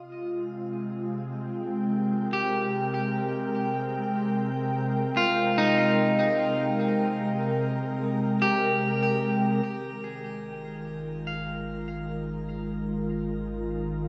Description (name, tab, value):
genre	ambient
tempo	74 BPM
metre	3/4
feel	straight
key	Ab major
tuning	A4 = 439 Hz
part	ethereal airy pad	sustained chords	0.0-14.1 s	C3 to G5	-30 LUFS	equal	ensemble chorus, built-in reverb, shimmer reverb
part	electric guitar at the edge of break-up	arpeggios	0.0-13.8 s	Eb4 to F5	-30 LUFS	equal	tape echo, shimmer reverb
part	warm sub bass	bass	9.6-14.1 s	Ab1	-43 LUFS	equal	none
room	wet plate reverb, RT60 3.6 s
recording	echo-heavy mix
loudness	-27 LUFS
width	mono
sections	0.0-9.7 A section; 9.7-14.1 A section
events	fade-in on clean electric guitar 9.7-14.1; fade-in on sub bass 9.7-14.1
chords	0.0 Abmaj9; 9.7 Bb7sus4/Ab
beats	0.74 1.55 | 2.36 3.17 3.98 | 4.79 5.60 6.41 | 7.22 8.03 8.84 | 9.65 10.47 11.28 | 12.09 12.90 13.71